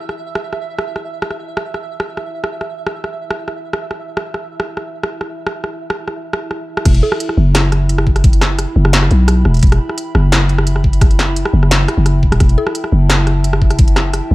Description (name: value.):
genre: half-time drum and bass.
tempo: 173 BPM.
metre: 4/4.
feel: half-time.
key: E minor.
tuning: A4 = 440 Hz.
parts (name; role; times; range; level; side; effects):
dark analog pad; sustained chords; 0.0-14.3 s; E4 to B5; -27 LUFS; right 1 dB; chorus, sidechain pumping.
pulsing gated texture; texture; 0.0-6.9 s; E5; -30 LUFS; right 6 dB; chorus, built-in reverb.
industrial drum kit; drums; 0.1-14.2 s; crash cymbal, hi-hat, rim click, snare drum; -19 LUFS; equal; small room ambience.
growling 808-style bass; bass; 6.9-14.3 s; D1 to B1; -12 LUFS; equal; tube saturation.
electronic kick drum; drums; 6.9-13.9 s; none; -11 LUFS; equal; overdrive, small room ambience.
mallet-like synth pluck; melody; 7.0-7.4, 12.6-12.9 s; A4; -24 LUFS; left 1 dB; chorus, phaser, digital delay.
room: little or no reverb.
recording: dark, warm production.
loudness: -13 LUFS.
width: side -19 dB against mid.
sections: 0.0-6.9 A section; 6.9-14.3 B section.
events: drop 6.9-14.3.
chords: 0.0 Em.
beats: 0.26 0.61 0.96 | 1.30 1.65 2.00 2.34 | 2.69 3.04 3.38 3.73 | 4.08 4.42 4.77 5.12 | 5.47 5.81 6.16 6.51 | 6.85 7.20 7.55 7.89 | 8.24 8.59 8.93 9.28 | 9.63 9.97 10.32 10.67 | 11.02 11.36 11.71 12.05 | 12.40 12.75 13.10 13.44 | 13.79 14.14.